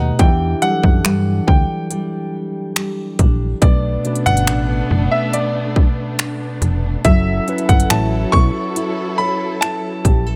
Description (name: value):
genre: contemporary R&B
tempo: 70 BPM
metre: 4/4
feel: straight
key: B minor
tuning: A4 = 440 Hz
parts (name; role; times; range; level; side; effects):
- clear concert grand piano; melody; 0.0-10.4 s; D5 to C#6; -24 LUFS; equal; none
- mellow tine electric piano; accompaniment; 0.0-10.4 s; B2 to D5; -25 LUFS; equal; subtle chorus
- nylon-string guitar; arpeggios; 0.0-10.4 s; B2 to C#5; -29 LUFS; equal; none
- slap-like FM bass; bass; 0.0-10.4 s; E#1 to G2; -20 LUFS; equal; none
- trap drum kit; drums; 0.2-10.2 s; finger snaps, hi-hat, kick drum; -17 LUFS; equal; none
- warm studio string section; sustained chords; 3.6-10.4 s; F#3 to A4; -30 LUFS; equal; sidechain pumping
room: small room ambience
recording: none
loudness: -17 LUFS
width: mono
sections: 0.0-10.4 A section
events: none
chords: 0.2 Em9; 3.6 Bm9; 7.0 F#m7